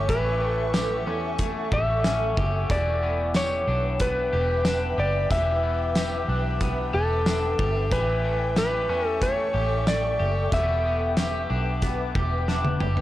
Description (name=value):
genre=dream pop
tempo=92 BPM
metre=4/4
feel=straight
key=E dorian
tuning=A4 = 443 Hz
part: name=electric slide guitar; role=melody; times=0.0-11.5 s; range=A4 to E5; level=-26 LUFS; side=equal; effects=analog delay
part: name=ethereal airy pad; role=sustained chords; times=0.0-13.0 s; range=A4 to D6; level=-32 LUFS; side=equal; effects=ensemble chorus, built-in reverb, tremolo
part: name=electric guitar at the edge of break-up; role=arpeggios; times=0.0-13.0 s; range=E3 to G4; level=-31 LUFS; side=left 3 dB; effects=wide subtle chorus, analog delay
part: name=vintage muted fingered electric bass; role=bass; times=0.0-13.0 s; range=E1 to E2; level=-27 LUFS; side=equal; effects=tube saturation
part: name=loose indie drum kit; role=drums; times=0.1-13.0 s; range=hi-hat, kick drum, snare drum, tambourine, toms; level=-27 LUFS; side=equal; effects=none
room=light reverb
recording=none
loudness=-22 LUFS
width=side -14 dB against mid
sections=0.0-13.0 A section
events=drum fill 12.5-13.0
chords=0.0 A7; 2.7 Em7; 7.9 A7; 10.5 Em7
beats=| 0.09 0.74 1.39 2.04 | 2.70 3.35 4.00 4.65 | 5.31 5.96 6.61 7.26 | 7.91 8.57 9.22 9.87 | 10.52 11.18 11.83 12.48